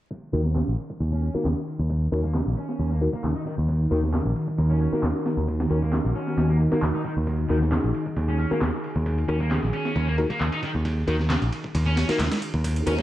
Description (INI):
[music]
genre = breakbeat, breaks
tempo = 134 BPM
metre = 4/4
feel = swing 53% on 16ths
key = Eb minor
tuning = A4 = 441 Hz
[part]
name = lush unison pad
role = sustained chords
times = 0.1-13.0 s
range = Eb3 to Bb4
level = -29 LUFS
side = equal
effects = chorus, sidechain pumping
[part]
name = breakbeat sampler-style drum kit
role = drums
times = 0.1-13.0 s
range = hi-hat, kick drum, ride cymbal, snare drum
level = -32 LUFS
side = equal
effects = overdrive, high-pass filter on cymbals, high-pass filter on kick, high-pass filter on snare, high-pass filter on hats, high-pass filter on room
[part]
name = fuzz guitar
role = riff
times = 0.3-13.0 s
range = Db3 to Eb4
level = -32 LUFS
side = right 1 dB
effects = distortion, tube saturation, low-pass filter, digital delay
[part]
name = tine electric piano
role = stabs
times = 0.3-12.9 s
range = Eb4 to Bb4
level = -30 LUFS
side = left 2 dB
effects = low-pass filter, digital delay
[part]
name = picked electric bass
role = bass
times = 0.3-13.0 s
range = Bb1 to Eb2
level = -24 LUFS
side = equal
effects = low-pass filter
[part]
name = electronic handclaps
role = drums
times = 0.6-12.3 s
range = none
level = -36 LUFS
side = equal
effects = overdrive
[part]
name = noise sweep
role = sound effects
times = 12.7-13.0 s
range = none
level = -32 LUFS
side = right 4 dB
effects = none
[sound]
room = light reverb, digital ambience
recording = vinyl crackle, low-pass filter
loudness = -22 LUFS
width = side -14 dB against mid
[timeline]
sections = 0.1-13.0 A section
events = filter sweep on picked electric bass 0.1-13.0; filter sweep on distorted electric guitar 0.1-13.0; filter sweep on analog synth pad 0.1-13.0; filter sweep 0.1-13.0; noise sweep 12.7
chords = 0.1 Ebm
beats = | 0.11 0.55 1.00 1.45 | 1.90 2.35 2.79 3.24 | 3.69 4.14 4.58 5.03 | 5.48 5.93 6.38 6.82 | 7.27 7.72 8.17 8.61 | 9.06 9.51 9.96 10.40 | 10.85 11.30 11.75 12.20 | 12.64